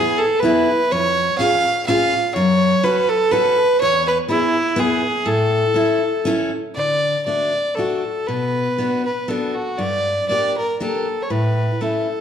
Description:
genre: alpine folk, alpine dance band.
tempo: 121 BPM.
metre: 3/4.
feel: swing 54% on 8ths.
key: A major, D major from 6.8 s.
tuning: A4 = 440 Hz.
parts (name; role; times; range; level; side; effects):
clear fiddle; melody; 0.0-12.2 s; E4 to E#5; -18 LUFS; right 1 dB; none.
picked steel-string acoustic guitar; accompaniment; 0.0-12.1 s; E2 to A4; -21 LUFS; left 1 dB; none.
room: wet recital hall reverb, RT60 1.3 s.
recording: dark, warm production.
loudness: -16 LUFS.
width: side -8 dB against mid.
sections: 0.0-6.8 A section; 6.8-12.2 B section.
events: none.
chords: 0.0 E; 0.9 C#/E#; 2.4 F#m; 3.8 E; 5.3 A; 6.8 D; 8.3 Bm; 9.8 Gm; 11.3 A.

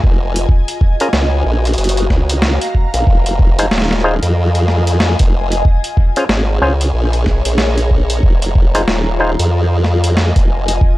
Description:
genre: glitch hop.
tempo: 93 BPM.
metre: 4/4.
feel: swing 60% on 16ths.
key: F phrygian.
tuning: A4 = 440 Hz.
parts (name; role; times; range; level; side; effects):
formant-sweep wobble bass; bass; 0.0-10.8 s; Eb1 to F2; -14 LUFS; equal; chorus.
electronic kick drum; drums; 0.0-11.0 s; none; -11 LUFS; equal; none.
ethereal airy pad; texture; 0.0-11.0 s; F4 to Bb5; -22 LUFS; left 1 dB; ensemble chorus, built-in reverb, phaser, sidechain pumping.
boom bap sampler-style drum kit; drums; 0.4-10.8 s; hi-hat, snare drum; -19 LUFS; equal; none.
auto-wah clav; stabs; 1.0-9.3 s; Db4 to C5; -17 LUFS; left 1 dB; sidechain pumping, analog delay.
room: little or no reverb.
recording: dry, gritty hardware recording.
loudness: -12 LUFS.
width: side -17 dB against mid.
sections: 0.0-11.0 A section.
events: none.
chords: 0.5 Gbmaj7; 3.1 Fm7; 5.7 Bbm7; 8.2 Fm7.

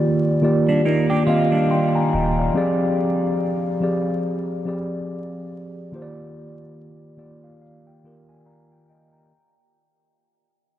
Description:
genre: hip hop.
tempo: 71 BPM.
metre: 4/4.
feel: swing 59% on 16ths.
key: unclear.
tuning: A4 = 440 Hz.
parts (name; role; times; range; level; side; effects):
mellow tine electric piano; accompaniment; 0.0-9.5 s; Eb3 to C6; -20 LUFS; equal; slow stereo tremolo, low-pass filter.
semi-hollow electric guitar; second line; 0.7-2.5 s; G3 to G4; -26 LUFS; right 3 dB; analog chorus, low-pass filter, ping-pong delay.
warm sub bass; bass; 2.1-2.5 s; Eb1; -25 LUFS; equal; none.
room: wet huge ambient reverb, RT60 7.4 s.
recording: dreamy mix soaked in reverb, vinyl crackle.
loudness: -18 LUFS.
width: side -12 dB against mid.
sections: 0.0-9.3 A section.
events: fade-out 0.0-9.3.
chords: 0.0 Ebmaj9; 2.5 Fm69; 5.9 Ebmaj9.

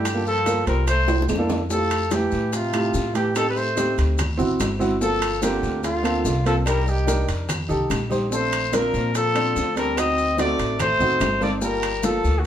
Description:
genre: Afro-Cuban jazz.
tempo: 145 BPM.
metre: 4/4.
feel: straight.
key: F major.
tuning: A4 = 440 Hz.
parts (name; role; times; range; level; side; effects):
mellow trumpet; melody; 0.0-12.5 s; F4 to Eb5; -23 LUFS; left 1 dB; none.
bright trombone; second line; 0.0-12.5 s; C3 to C4; -31 LUFS; left 1 dB; none.
dark baby grand piano; accompaniment; 0.0-12.5 s; A3 to C5; -25 LUFS; right 2 dB; none.
upright bass; bass; 0.0-12.5 s; G1 to Bb2; -26 LUFS; equal; none.
congas; percussion; 0.0-12.5 s; none; -32 LUFS; left 1 dB; none.
bongos; percussion; 0.1-12.4 s; none; -34 LUFS; left 5 dB; none.
claves; percussion; 0.1-12.0 s; none; -37 LUFS; left 2 dB; none.
guiro; percussion; 0.1-12.5 s; none; -40 LUFS; left 3 dB; none.
maracas; percussion; 0.1-12.5 s; none; -37 LUFS; left 4 dB; none.
timbales; percussion; 0.1-12.2 s; none; -32 LUFS; right 5 dB; none.
room: moderate stone room reverb, RT60 1.1 s.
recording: band playing live in one room.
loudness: -19 LUFS.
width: side -10 dB against mid.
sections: 0.0-1.7 A section; 1.7-12.5 B section.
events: drum fill 1.1-1.7.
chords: 0.1 Gm7; 0.9 C13; 1.7 Fmaj7; 3.4 Am7b5; 4.2 D7; 5.0 Gm11; 6.7 Cm9; 7.5 F9; 8.3 Bbmaj9; 10.0 D7b9; 11.6 Gm7.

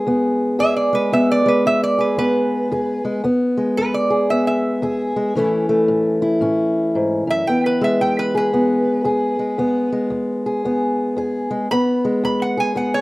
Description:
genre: acoustic country blues, solo or duo.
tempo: 113 BPM.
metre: 4/4.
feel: swing 63% on 8ths.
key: E major.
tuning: A4 = 440 Hz.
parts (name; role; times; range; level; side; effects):
fingerpicked acoustic archtop guitar; accompaniment; 0.0-13.0 s; E2 to G#4; -17 LUFS; left 1 dB; none.
lap resonator guitar; melody; 0.6-13.0 s; B4 to B5; -20 LUFS; right 2 dB; none.
room: moderate studio reverb, RT60 0.6 s.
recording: rough home demo mix.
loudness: -16 LUFS.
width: side -20 dB against mid.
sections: 0.0-13.0 A section.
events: none.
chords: 0.0 E; 5.3 A; 7.5 E.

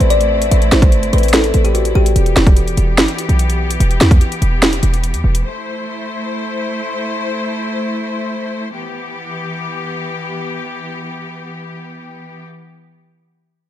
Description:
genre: hip hop, trap.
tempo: 146 BPM.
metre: 4/4.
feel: half-time.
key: E minor.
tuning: A4 = 439 Hz.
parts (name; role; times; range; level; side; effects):
kalimba; melody; 0.0-2.1 s; F#4 to E5; -19 LUFS; left 2 dB; tape echo.
clear symphonic string section; sustained chords; 0.0-12.5 s; E3 to C5; -22 LUFS; left 2 dB; none.
short 808-style bass; bass; 0.0-5.4 s; E1 to E2; -14 LUFS; equal; none.
trap drum kit; drums; 0.0-5.4 s; hi-hat, kick drum, snare drum; -13 LUFS; equal; overdrive.
room: small room ambience.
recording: dark, warm production.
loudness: -13 LUFS.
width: side -12 dB against mid.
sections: 0.0-2.2 A section; 2.2-8.7 B section; 8.7-12.0 C section.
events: none.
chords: 0.0 Am; 2.2 Em; 5.4 Am; 8.7 Em.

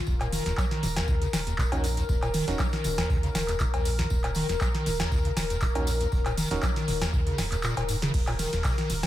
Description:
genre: acid house.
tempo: 119 BPM.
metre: 4/4.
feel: swing 54% on 16ths.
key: Eb minor.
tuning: A4 = 440 Hz.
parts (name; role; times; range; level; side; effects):
warm analog pad; sustained chords; 0.0-9.1 s; Bb4; -33 LUFS; left 2 dB; chorus, sidechain pumping.
liquid acid bass; riff; 0.1-9.1 s; Eb2 to Gb3; -32 LUFS; equal; overdrive, ensemble chorus, vintage 12-bit sampler grit, sidechain pumping, tape echo.
saturated sub bass; bass; 0.1-9.1 s; Eb1 to Eb2; -32 LUFS; equal; tube saturation, sidechain pumping.
electronic kick drum; drums; 0.1-8.8 s; none; -28 LUFS; equal; none.
tambourine; percussion; 0.1-9.1 s; none; -40 LUFS; left 4 dB; none.
booming analog drum machine; drums; 0.2-9.1 s; cowbell, crash cymbal, handclaps, hi-hat, ride cymbal, snare drum, toms; -31 LUFS; equal; none.
percussive organ stab; stabs; 1.7-2.6, 5.8-6.7 s; Db4 to Bb4; -36 LUFS; right 3 dB; chorus, tape echo.
room: light reverb, digital ambience.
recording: none.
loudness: -24 LUFS.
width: side -14 dB against mid.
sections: 0.0-9.1 A section.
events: kick drops out 7.6-8.1.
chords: 0.0 Ebm7.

